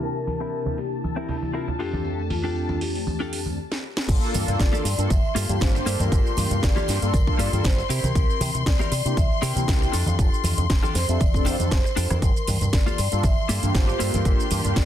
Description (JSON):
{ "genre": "nu-disco, nu disco", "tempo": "118 BPM", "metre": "4/4", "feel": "swing 54% on 16ths", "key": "G dorian", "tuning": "A4 = 439 Hz", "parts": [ { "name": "vibraphone with soft mallets", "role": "melody", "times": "0.0-14.8 s", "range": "E4 to G5", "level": "-32 LUFS", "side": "left 1 dB", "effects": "tape echo" }, { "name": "mellow synth brass", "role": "accompaniment", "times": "0.0-14.8 s", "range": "F2 to A4", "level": "-29 LUFS", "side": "equal", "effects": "chorus, sidechain pumping" }, { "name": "bright studio string section", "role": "sustained chords", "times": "0.0-14.8 s", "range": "A5 to C6", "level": "-33 LUFS", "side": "left 8 dB", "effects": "sidechain pumping" }, { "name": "direct-recorded clean electric guitar", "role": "riff", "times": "0.0-14.5 s", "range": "Bb3 to Bb4", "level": "-32 LUFS", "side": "left 2 dB", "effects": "analog chorus, vintage 12-bit sampler grit" }, { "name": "tambourine, congas and bongos", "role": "percussion", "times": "0.0-14.8 s", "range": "none", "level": "-32 LUFS", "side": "right 1 dB", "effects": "none" }, { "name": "house drum kit", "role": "drums", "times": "0.3-14.8 s", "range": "crash cymbal, hi-hat, rim click, shaker, snare drum", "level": "-30 LUFS", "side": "right 2 dB", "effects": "none" }, { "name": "fingered electric bass with an envelope filter", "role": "bass", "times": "4.1-14.8 s", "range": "F1 to C3", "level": "-25 LUFS", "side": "equal", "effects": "tube saturation" }, { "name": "electronic kick drum", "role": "drums", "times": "4.1-14.8 s", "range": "none", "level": "-22 LUFS", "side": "equal", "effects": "none" } ], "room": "little or no reverb", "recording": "dense, heavily limited modern master, low-pass filter", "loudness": "-20 LUFS", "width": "side -11 dB against mid", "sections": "0.0-4.1 A section; 4.1-14.8 B section", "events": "filter sweep on clean electric guitar 0.0-4.1; filter sweep on analog polysynth 0.0-4.1; filter sweep 0.0-4.1; drum fill 3.7-4.1; drop 4.1-14.8", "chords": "0.0 C7; 1.8 F69; 4.1 Gm9; 7.9 C7; 9.9 F69; 12.2 Gm9" }